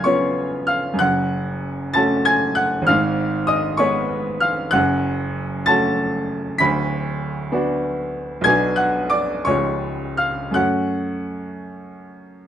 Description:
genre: classical, romantic character piece for solo piano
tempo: 49-66 BPM (dotted quarters)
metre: 6/8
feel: rubato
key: F# minor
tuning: A4 = 440 Hz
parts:
  - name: bright upright piano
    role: solo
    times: 0.0-12.5 s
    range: C#1 to B6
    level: -18 LUFS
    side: equal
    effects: none
room: moderate large studio reverb, RT60 0.9 s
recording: dark, warm production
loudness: -18 LUFS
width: side -10 dB against mid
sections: 0.0-12.5 A section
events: none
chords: 0.0 C#7/F#; 1.0 F#m; 2.9 Fdim/Ab; 4.7 F#m; 6.6 Bm/D; 8.5 Bm; 9.5 C#; 10.6 F#m

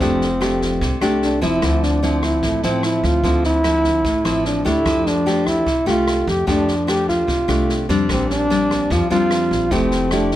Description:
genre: bossa nova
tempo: 148 BPM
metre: 4/4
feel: straight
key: F major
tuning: A4 = 436 Hz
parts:
  - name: mellow trombone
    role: melody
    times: 0.0-10.4 s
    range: C4 to G4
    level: -19 LUFS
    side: equal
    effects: none
  - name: nylon-string guitar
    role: accompaniment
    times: 0.0-10.4 s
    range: A2 to G4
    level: -20 LUFS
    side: left 1 dB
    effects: none
  - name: upright bass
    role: bass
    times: 0.0-10.4 s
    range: F1 to F2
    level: -24 LUFS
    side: equal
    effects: none
  - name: open jazz drum kit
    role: drums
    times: 0.0-10.4 s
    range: kick drum, rim click, snare drum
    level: -26 LUFS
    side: equal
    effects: none
room: light reverb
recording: none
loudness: -16 LUFS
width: side -13 dB against mid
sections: 0.0-10.4 A section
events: none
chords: 0.0 F69; 1.6 Dm9; 4.9 F69; 8.1 Bb69; 9.7 Fmaj9

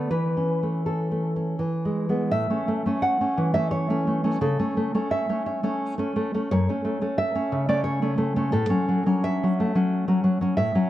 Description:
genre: romantic piece for solo classical guitar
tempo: 79-92 BPM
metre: 3/4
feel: rubato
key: A major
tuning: A4 = 441 Hz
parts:
  - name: nylon-string guitar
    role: solo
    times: 0.0-10.9 s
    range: F#2 to F#5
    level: -22 LUFS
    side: equal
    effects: analog delay
room: moderate studio reverb, RT60 0.6 s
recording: cassette tape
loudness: -22 LUFS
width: side -14 dB against mid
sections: 0.0-2.3 A section; 2.3-10.9 B section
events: none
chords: 0.1 A/E; 1.6 E; 2.3 A; 4.4 A/C#; 6.5 F#m (rootless); 8.5 F#m/A

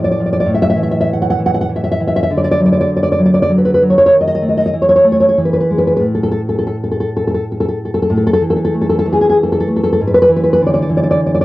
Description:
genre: romantic piece for solo classical guitar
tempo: 86-102 BPM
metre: 3/4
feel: rubato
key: A major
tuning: A4 = 441 Hz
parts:
  - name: nylon-string guitar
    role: solo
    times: 0.0-11.4 s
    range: G#2 to F#5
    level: -11 LUFS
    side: equal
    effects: cassette tape
room: light reverb, small room ambience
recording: home recording on cassette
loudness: -11 LUFS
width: side -18 dB against mid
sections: 0.0-8.1 A section; 8.1-11.4 A section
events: none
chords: 0.0 A(#5, no3); 0.5 A5; 2.3 D; 4.1 N.C.; 4.7 A5/E; 5.4 E; 6.0 N.C.; 8.1 A5; 10.0 E7(no3)

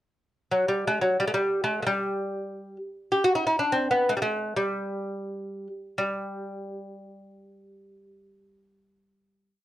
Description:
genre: Persian modal ensemble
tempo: free time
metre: none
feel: none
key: G dastgah chahargah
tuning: A4 = 442 Hz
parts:
  - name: lute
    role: solo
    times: 0.5-9.6 s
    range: F#3 to G4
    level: -25 LUFS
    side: equal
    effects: none
room: moderate small room reverb, RT60 0.6 s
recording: none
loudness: -24 LUFS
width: side -13 dB against mid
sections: 0.3-6.0 free-time section; 6.0-8.8 final note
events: none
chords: none

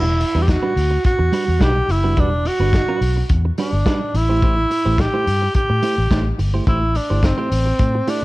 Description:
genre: disco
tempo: 107 BPM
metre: 4/4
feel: straight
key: E minor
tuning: A4 = 440 Hz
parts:
  - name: breathy tenor saxophone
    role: melody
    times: 0.0-8.2 s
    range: C4 to G4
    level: -20 LUFS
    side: right 1 dB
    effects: none
  - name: clean electric guitar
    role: accompaniment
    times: 0.0-8.2 s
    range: G3 to C5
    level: -25 LUFS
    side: right 4 dB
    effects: none
  - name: vintage muted fingered electric bass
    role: bass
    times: 0.0-8.0 s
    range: E1 to A2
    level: -19 LUFS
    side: equal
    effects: none
  - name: vintage drum kit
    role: drums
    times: 0.2-8.2 s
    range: hi-hat, kick drum, snare drum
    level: -21 LUFS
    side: equal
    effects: none
room: small room ambience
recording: dark, warm production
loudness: -15 LUFS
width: side -19 dB against mid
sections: 0.0-8.2 A section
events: none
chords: 0.0 Em9; 4.1 Am7

